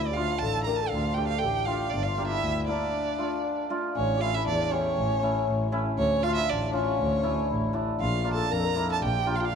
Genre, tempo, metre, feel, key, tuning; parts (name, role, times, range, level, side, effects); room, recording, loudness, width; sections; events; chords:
klezmer; 119 BPM; 2/4; straight; D harmonic minor; A4 = 441 Hz
rich violin; melody; 0.0-9.5 s; C#5 to Bb5; -30 LUFS; right 8 dB
mellow accordion; second line; 0.0-9.6 s; C#4 to Bb4; -31 LUFS; left 9 dB
warm double bass; bass; 0.0-9.6 s; G1 to F2; -29 LUFS; equal
hammered dulcimer; accompaniment; 0.2-9.4 s; A3 to G4; -32 LUFS; equal
moderate plate reverb, RT60 3.4 s; 1960s-style stereo with parts hard left and right; -24 LUFS; side -6 dB against mid
0.0-4.0 A section; 4.0-9.6 B section
0.0 Dm; 1.9 Gm; 2.9 Dm; 4.0 A; 6.0 Dm; 8.0 Bb